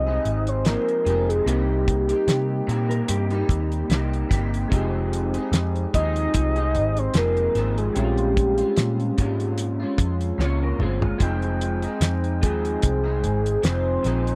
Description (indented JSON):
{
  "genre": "indie pop, bedroom pop",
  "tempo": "74 BPM",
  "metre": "4/4",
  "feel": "swing 55% on 16ths",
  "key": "F minor",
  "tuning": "A4 = 442 Hz",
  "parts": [
    { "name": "soft octave-layered synth lead", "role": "melody", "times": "0.0-14.4 s", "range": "G4 to Eb5", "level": "-27 LUFS", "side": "equal", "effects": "phaser, subtle chorus" },
    { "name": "electric guitar through a small old amp", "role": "accompaniment", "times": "0.0-14.4 s", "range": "Bb2 to Ab4", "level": "-32 LUFS", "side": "equal", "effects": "analog chorus, vibrato effect" },
    { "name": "soft electric-piano-like synth keys", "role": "accompaniment", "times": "0.0-14.4 s", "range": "Ab3 to G5", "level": "-34 LUFS", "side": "equal", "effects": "chorus, tremolo" },
    { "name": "vintage muted picked electric bass", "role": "bass", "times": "0.0-14.4 s", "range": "F1 to C3", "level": "-27 LUFS", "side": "equal", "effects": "none" },
    { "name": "cloth-damped thuddy drum kit", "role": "drums", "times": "0.3-14.4 s", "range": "hi-hat, kick drum, snare drum, toms", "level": "-26 LUFS", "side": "equal", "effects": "none" },
    { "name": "mellow electric guitar", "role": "second line", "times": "2.9-4.5, 10.4-11.4 s", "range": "G3 to Db5", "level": "-35 LUFS", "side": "equal", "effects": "ensemble chorus, tape echo" }
  ],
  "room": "light reverb",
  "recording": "dry, close 1970s-style studio recording",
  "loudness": "-23 LUFS",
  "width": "mono",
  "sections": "0.0-14.4 A section",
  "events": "drum fill 10.4-11.2",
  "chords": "0.0 Fm7; 1.5 Cm7; 4.7 Fm7; 8.0 Bbm7; 11.2 Fm7",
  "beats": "0.66 | 1.47 2.29 3.10 3.91 | 4.72 5.53 6.34 7.15 | 7.97 8.78 9.59 10.40 | 11.21 12.02 12.84 13.65"
}